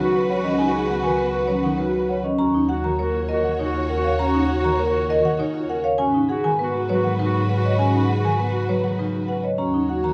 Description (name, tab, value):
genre	classical, minimalist pattern music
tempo	100 BPM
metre	3/4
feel	straight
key	Eb minor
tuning	A4 = 440 Hz
part	marimba with hard mallets	melody	0.0-10.1 s	B4 to Bb5	-29 LUFS	equal	none
part	breathy clarinet	second line	0.0-10.1 s	F#4	-33 LUFS	equal	none
part	concert harp	accompaniment	0.0-10.1 s	C#3 to C#4	-30 LUFS	equal	none
part	warm studio violin section	sustained chords	0.0-10.1 s	F#4 to Db5	-34 LUFS	equal	none
part	vibraphone with medium hard mallets	arpeggios	0.0-10.1 s	C#4 to C#5	-25 LUFS	equal	none
part	warm studio double bass section	bass	0.0-10.1 s	C#2 to Ab2	-30 LUFS	equal	none
room	moderate large studio reverb, RT60 0.8 s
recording	small room ambience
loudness	-21 LUFS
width	mono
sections	0.0-2.4 A section; 2.4-10.1 B section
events	none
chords	0.0 C#7sus4; 2.4 Ebm7; 6.0 Abm7; 9.6 Ebm7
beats	| 0.59 1.19 1.79 | 2.39 2.99 3.59 | 4.19 4.79 5.39 | 5.99 6.59 7.19 | 7.79 8.39 8.99 | 9.59